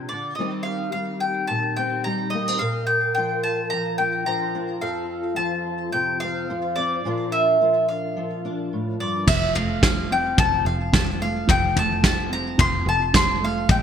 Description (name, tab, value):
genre	indie folk with a building arrangement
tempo	108 BPM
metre	4/4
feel	straight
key	F major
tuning	A4 = 436 Hz
part	mandolin	melody	0.0-13.8 s	D5 to C6	-23 LUFS	left 1 dB	digital delay
part	fingerpicked steel-string acoustic guitar	accompaniment	0.0-9.3 s	F2 to Bb4	-26 LUFS	equal	ensemble chorus
part	dark upright piano	arpeggios	9.3-13.8 s	F3 to C4	-28 LUFS	right 4 dB	digital delay
part	fingered electric bass	bass	9.3-13.8 s	F1 to Bb1	-27 LUFS	right 1 dB	none
part	soft brush drum kit	drums	9.3-13.8 s	crash cymbal, kick drum, snare drum, toms	-20 LUFS	equal	gated reverb
room	light reverb, small room ambience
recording	bright 1980s-style digital production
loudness	-20 LUFS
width	side -8 dB against mid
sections	0.0-9.3 A section; 9.3-13.8 A section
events	none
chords	0.4 Eb6; 2.6 Bb; 4.8 F; 7.0 Bb; 9.3 F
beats	| 0.39 0.94 1.50 2.05 | 2.61 3.16 3.72 4.27 | 4.83 5.38 5.94 6.50 | 7.05 7.61 8.16 8.71 | 9.27 9.82 10.37 10.93 | 11.48 12.03 12.58 13.14 | 13.69